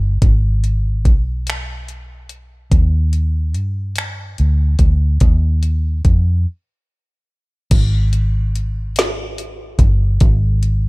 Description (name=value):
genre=slow six-eight R&B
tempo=48 BPM (dotted quarters)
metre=6/8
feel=straight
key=Eb major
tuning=A4 = 439 Hz
part: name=vintage muted fingered electric bass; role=bass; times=0.0-10.9 s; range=G1 to G2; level=-16 LUFS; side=equal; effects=none
part: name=smooth R&B drum kit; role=drums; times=0.2-10.8 s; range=crash cymbal, finger snaps, hi-hat, kick drum, snare drum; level=-15 LUFS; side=equal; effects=none
room=little or no reverb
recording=none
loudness=-14 LUFS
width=side -24 dB against mid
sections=0.0-7.7 A section; 7.7-10.9 B section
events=break 6.5-7.7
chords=none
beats=| 0.22 1.47 | 2.72 3.97 | 5.22 6.47 | 7.72 8.97 | 10.22